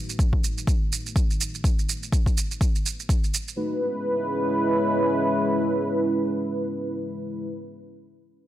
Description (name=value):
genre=afro house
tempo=124 BPM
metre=4/4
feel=swing 57% on 16ths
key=C# minor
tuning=A4 = 440 Hz
part: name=dark analog pad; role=sustained chords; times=0.0-7.5 s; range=G#3 to B4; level=-24 LUFS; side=equal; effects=chorus, sidechain pumping
part: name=shaker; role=drums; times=0.1-3.6 s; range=none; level=-30 LUFS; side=right 6 dB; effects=overdrive
part: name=electronic kick drum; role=drums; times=0.2-3.2 s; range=none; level=-22 LUFS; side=equal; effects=overdrive
room=light reverb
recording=none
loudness=-22 LUFS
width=side -13 dB against mid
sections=0.0-3.6 A section; 3.6-7.4 B section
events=filter sweep on analog synth pad 0.0-3.6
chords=0.0 B7; 3.6 C#m7